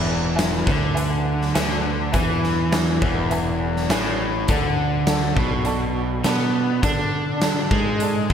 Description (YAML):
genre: classic rock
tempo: 102 BPM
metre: 4/4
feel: straight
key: E mixolydian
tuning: A4 = 440 Hz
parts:
  - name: clear upright piano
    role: accompaniment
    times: 0.0-8.3 s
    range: A4 to A5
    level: -30 LUFS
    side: right 2 dB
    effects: none
  - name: overdriven electric guitar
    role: riff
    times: 0.0-8.3 s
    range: E2 to D4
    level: -26 LUFS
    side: left 10 dB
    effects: none
  - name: overdriven semi-hollow guitar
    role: riff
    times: 0.0-8.3 s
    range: E2 to D4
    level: -24 LUFS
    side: right 8 dB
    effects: none
  - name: fuzz picked electric bass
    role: bass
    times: 0.0-8.3 s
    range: E1 to D3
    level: -26 LUFS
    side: equal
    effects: overdrive
  - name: big rock drum kit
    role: drums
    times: 0.4-8.3 s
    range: hi-hat, kick drum, snare drum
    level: -24 LUFS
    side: left 1 dB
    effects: none
room: moderate lush hall reverb, RT60 2.8 s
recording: big arena sound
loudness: -19 LUFS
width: side -8 dB against mid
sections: 0.0-8.3 A section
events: none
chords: 0.0 E; 4.5 D5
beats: 0.37 0.96 1.55 | 2.14 2.73 3.31 3.90 | 4.49 5.07 5.66 6.25 | 6.84 7.42 8.01